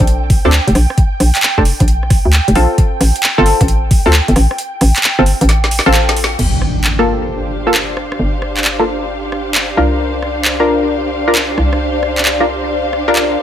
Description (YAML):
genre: UK garage, two-step garage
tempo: 133 BPM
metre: 4/4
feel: swing 66% on 16ths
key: G minor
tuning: A4 = 442 Hz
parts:
  - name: ethereal airy pad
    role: sustained chords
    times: 0.0-13.4 s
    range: D5 to G5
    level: -23 LUFS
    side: left 1 dB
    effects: ensemble chorus, built-in reverb, sidechain pumping
  - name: punchy chord stab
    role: stabs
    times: 0.0-13.4 s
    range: Bb3 to Bb4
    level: -16 LUFS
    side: left 1 dB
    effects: chorus, ping-pong delay
  - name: hollow knocking FM bass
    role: bass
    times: 0.0-13.4 s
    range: F1 to D2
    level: -15 LUFS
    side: equal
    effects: sidechain pumping
  - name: electronic kick drum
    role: drums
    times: 0.0-4.0 s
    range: none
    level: -12 LUFS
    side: equal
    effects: overdrive
  - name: garage drum kit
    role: drums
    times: 0.0-13.3 s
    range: crash cymbal, handclaps, hi-hat, rim click, snare drum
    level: -16 LUFS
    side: equal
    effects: overdrive
  - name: impact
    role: sound effects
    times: 6.4-8.2 s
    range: none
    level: -19 LUFS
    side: equal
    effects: none
  - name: muted studio string section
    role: texture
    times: 6.4-13.4 s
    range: D4 to F5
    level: -20 LUFS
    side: right 1 dB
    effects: sidechain pumping
room: light reverb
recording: none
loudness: -11 LUFS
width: side -10 dB against mid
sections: 0.0-6.4 A section; 6.4-13.4 B section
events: kick drops out 4.6-6.4; drum fill 5.5-6.4; band accent 6.2; impact 6.4-8.2; filter sweep on ambient pad 6.4-13.4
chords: 0.0 Bbmaj7; 2.8 Dm7 (rootless); 6.4 Gm9; 9.8 C7sus4